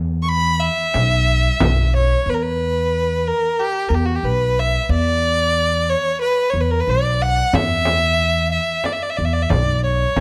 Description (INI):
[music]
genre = Arabic maqam ensemble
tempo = 91 BPM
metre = 4/4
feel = straight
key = E maqam nikriz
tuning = A4 = 440 Hz
[part]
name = upright bass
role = bass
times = 0.0-10.2 s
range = B1 to E2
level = -22 LUFS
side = equal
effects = none
[part]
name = warm violin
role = melody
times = 0.2-10.2 s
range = F#4 to C#6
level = -21 LUFS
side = equal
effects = none
[part]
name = frame drum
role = percussion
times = 0.9-1.8, 7.5-10.2 s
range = none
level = -24 LUFS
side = equal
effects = none
[sound]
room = light reverb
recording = close, detailed microphones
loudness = -18 LUFS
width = mono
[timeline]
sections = 0.0-2.3 A section; 2.3-10.2 B section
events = none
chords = none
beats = 0.29 0.95 1.60 | 2.26 2.92 3.58 4.24 | 4.90 5.55 6.21 6.87 | 7.53 8.19 8.85 9.51 | 10.16